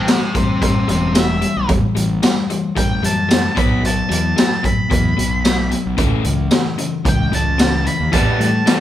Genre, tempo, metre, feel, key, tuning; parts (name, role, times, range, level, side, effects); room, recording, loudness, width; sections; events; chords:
indie rock; 112 BPM; 4/4; straight; E dorian; A4 = 440 Hz
octave-fuzz lead guitar; melody; 0.0-8.8 s; G4 to B5; -22 LUFS; equal; distortion
overdriven electric guitar; riff; 0.0-8.8 s; B2 to B3; -21 LUFS; left 4 dB
fuzz fingered electric bass; bass; 0.0-8.6 s; E1 to A2; -21 LUFS; right 1 dB; overdrive
raw garage drum kit; drums; 0.1-8.8 s; hi-hat, kick drum, snare drum, tambourine; -17 LUFS; equal
fuzz guitar; riff; 8.1-8.8 s; E3 to G4; -22 LUFS; right 4 dB; distortion
light reverb; band playing live in one room; -14 LUFS; side -12 dB against mid
0.0-8.8 A section
lead electric guitar solo 0.0-8.8
0.0 Emadd9; 3.6 B5; 6.0 A/C#; 8.1 Em